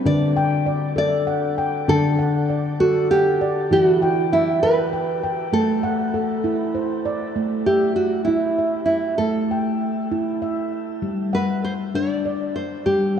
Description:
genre	world meditative, meditative tuned percussion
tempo	66 BPM (dotted quarters)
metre	6/8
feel	straight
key	A dorian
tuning	A4 = 440 Hz
part	nylon-string guitar	melody	0.0-13.2 s	E4 to D5	-21 LUFS	right 1 dB	shimmer reverb
part	handpan	arpeggios	0.0-13.2 s	D3 to G5	-21 LUFS	equal	shimmer reverb, diffuse ambient delay
room	wet recital hall reverb, RT60 1.7 s, studio reverb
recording	dark, warm production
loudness	-18 LUFS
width	side -8 dB against mid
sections	0.0-7.4 A section; 7.4-13.2 B section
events	none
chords	0.1 D; 3.7 Em; 5.5 Am; 7.4 A5; 11.0 G5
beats	| 0.06 0.97 | 1.88 2.79 | 3.70 4.61 | 5.53 6.44 | 7.36 8.27 | 9.19 10.11 | 11.02 11.94 | 12.86

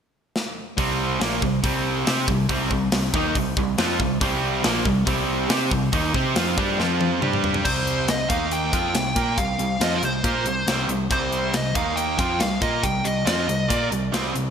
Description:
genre	hard rock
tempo	139 BPM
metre	4/4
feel	straight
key	C minor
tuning	A4 = 440 Hz
part	tight metal drum kit	drums	0.4-14.5 s	crash cymbal, hi-hat, kick drum, snare drum, toms	-26 LUFS	left 1 dB	gated reverb
part	cranked stack guitar	riff	0.8-7.6 s	Bb2 to C5	-26 LUFS	equal	overdrive, lush chorus
part	distorted electric guitar	riff	0.8-14.5 s	Bb2 to C5	-26 LUFS	right 9 dB	overdrive
part	sludgy distorted guitar	riff	0.8-14.5 s	Bb2 to C5	-29 LUFS	left 10 dB	overdrive
part	growling picked electric bass	bass	0.8-14.5 s	Bb1 to C3	-28 LUFS	equal	overdrive
part	nasal lead guitar with a parked wah	melody	7.6-13.9 s	Bb4 to G5	-25 LUFS	equal	overdrive
room	moderate lush hall reverb, RT60 2.0 s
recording	bright 1980s-style digital production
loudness	-20 LUFS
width	side -7 dB against mid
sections	0.8-7.6 A section; 7.6-14.5 B section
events	drum fill 0.3-0.8, 6.8-7.6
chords	0.0 N.C.; 0.8 Cm; 6.8 F5; 7.2 G5; 7.6 C5; 8.3 Eb5; 8.7 C5; 11.8 Eb5; 12.2 Cm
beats	0.34 | 0.77 1.20 1.63 2.06 | 2.49 2.92 3.35 3.78 | 4.21 4.63 5.06 5.49 | 5.92 6.35 6.78 7.21 | 7.64 8.08 8.51 8.94 | 9.37 9.80 10.24 10.67 | 11.10 11.54 11.97 12.40 | 12.84 13.27 13.70 14.14

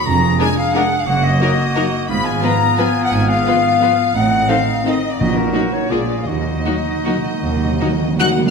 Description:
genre	classical, orchestral ballroom waltz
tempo	148-190 BPM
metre	3/4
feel	rubato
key	Eb minor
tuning	A4 = 441 Hz
part	mellow concert flute	second line	0.0-8.5 s	Bb4 to Cb6	-20 LUFS	left 4 dB	none
part	rich studio violin section	second line	0.0-8.5 s	Bb4 to Cb6	-24 LUFS	left 3 dB	none
part	dark studio double bass section	bass	0.0-7.7 s	F1 to Eb2	-22 LUFS	right 3 dB	none
part	mellow cor anglais	second line	0.1-8.4 s	Eb4 to Ab4	-27 LUFS	right 1 dB	none
part	warm clarinet	second line	0.1-8.3 s	Bb3 to F4	-24 LUFS	left 1 dB	none
part	warm studio cello section	bass	0.1-7.7 s	Eb2 to Bb2	-23 LUFS	right 4 dB	none
part	clear studio violin section	melody	0.4-8.3 s	Gb4 to Gb6	-26 LUFS	left 4 dB	none
part	rich studio viola section	accompaniment	0.4-8.3 s	Bb3 to Ab4	-25 LUFS	right 1 dB	none
part	mellow French horn section	sustained chords	0.4-8.5 s	Eb3 to Gb4	-25 LUFS	left 5 dB	none
part	timpani	percussion	5.2-8.5 s	Bb2 to Eb3	-21 LUFS	right 1 dB	none
room	wet concert hall reverb, RT60 1.8 s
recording	minimal, uncompressed stereo recording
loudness	-14 LUFS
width	side -5 dB against mid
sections	0.0-8.5 A section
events	timpani fill 6.3-8.5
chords	0.1 Bb7/F; 1.1 Ebm/Gb; 2.1 Fdim/Ab; 4.2 Adim7; 5.2 Ebm/Bb; 5.9 Bb7; 6.3 Ebm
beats	| 0.06 0.39 0.74 | 1.07 1.41 1.76 | 2.09 2.43 2.79 | 3.12 3.46 3.82 | 4.16 4.50 4.86 | 5.20 5.54 5.91 | 6.27 6.65 7.05 | 7.42 7.80 8.19

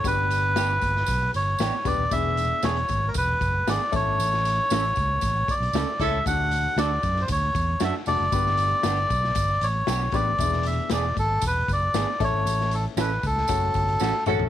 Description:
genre	uptempo 1960s-style soul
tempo	116 BPM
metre	4/4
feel	straight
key	unclear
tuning	A4 = 440 Hz
part	melodica	melody	0.0-14.2 s	A4 to F#5	-24 LUFS	equal	none
part	warm upright piano	accompaniment	0.0-14.4 s	A3 to B4	-31 LUFS	left 12 dB	none
part	fingered electric bass	bass	0.0-14.5 s	D#1 to F#2	-27 LUFS	right 1 dB	none
part	raw garage drum kit	drums	0.0-14.5 s	hi-hat, kick drum, snare drum, toms	-30 LUFS	left 3 dB	none
part	tambourine	percussion	0.0-14.4 s	none	-40 LUFS	right 18 dB	none
part	electric guitar through a small old amp	stabs	0.6-14.1 s	B3 to A4	-30 LUFS	right 14 dB	wide subtle chorus
part	dark horn section	second line	5.8-6.2, 14.0-14.4 s	A3 to A4	-30 LUFS	right 11 dB	none
room	studio ambience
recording	1960s-style stereo with parts hard left and right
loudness	-21 LUFS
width	side -11 dB against mid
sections	0.0-14.5 A section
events	band accent 4.2-6.3, 12.5-14.5; drum fill 14.0-14.5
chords	0.0 G; 2.1 E7; 3.9 A; 6.3 D; 8.3 G; 10.4 E7; 12.2 A; 13.5 F#m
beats	| 0.04 0.56 1.08 1.60 | 2.11 2.63 3.15 3.67 | 4.18 4.70 5.22 5.74 | 6.25 6.77 7.29 7.81 | 8.32 8.84 9.36 9.88 | 10.39 10.91 11.43 11.94 | 12.46 12.98 13.49 14.01

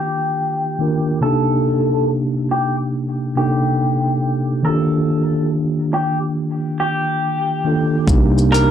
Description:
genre	lo-fi hip hop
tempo	70 BPM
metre	4/4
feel	swing 63% on 16ths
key	C dorian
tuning	A4 = 439 Hz
part	electric guitar through a small old amp	melody	0.0-8.7 s	G4 to Bb4	-21 LUFS	left 2 dB	wide subtle chorus
part	mellow tine electric piano	accompaniment	0.0-8.7 s	C3 to Bb4	-18 LUFS	equal	medium stereo tremolo
part	smooth synth bass	bass	8.1-8.7 s	C2	-15 LUFS	right 1 dB	tube saturation
part	dusty soul sampler-style drum kit	drums	8.1-8.7 s	hi-hat, kick drum, shaker	-16 LUFS	right 1 dB	none
room	light reverb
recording	dry, gritty hardware recording, low-pass filter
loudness	-16 LUFS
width	side -9 dB against mid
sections	0.0-8.1 A section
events	filter sweep 0.0-8.1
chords	0.0 Ebmaj9; 1.2 Cm9; 4.6 Ebmaj9; 8.1 Cm9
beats	0.36 | 1.22 2.08 2.94 3.79 | 4.65 5.51 6.36 7.22 | 8.08

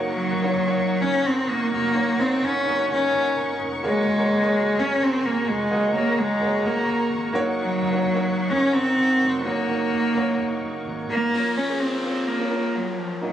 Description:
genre	piano-driven pop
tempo	128 BPM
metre	4/4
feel	straight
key	unclear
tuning	A4 = 441 Hz
part	clear grand piano	accompaniment	0.0-13.3 s	Bb2 to Eb5	-27 LUFS	right 1 dB	none
part	muted studio string section	sustained chords	0.0-11.3 s	Eb4 to Db6	-31 LUFS	right 1 dB	none
part	vintage muted fingered electric bass	bass	0.0-11.3 s	F1 to Ab1	-39 LUFS	equal	none
part	rich cello	melody	0.1-13.3 s	F3 to Db4	-21 LUFS	equal	none
part	downlifter	sound effects	11.3-13.3 s	none	-34 LUFS	equal	none
room	moderate large studio reverb, RT60 1.2 s, small room ambience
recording	recorded on a phone in the room, club reverb, compression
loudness	-20 LUFS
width	side -10 dB against mid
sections	0.0-11.3 A section; 11.3-13.3 B section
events	none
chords	0.0 Ebm7; 11.3 Bbm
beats	| 0.08 0.55 1.02 1.49 | 1.96 2.43 2.90 3.37 | 3.83 4.30 4.77 5.24 | 5.71 6.18 6.65 7.12 | 7.58 8.05 8.52 8.99 | 9.46 9.93 10.40 10.87 | 11.34 11.80 12.27 12.74 | 13.21

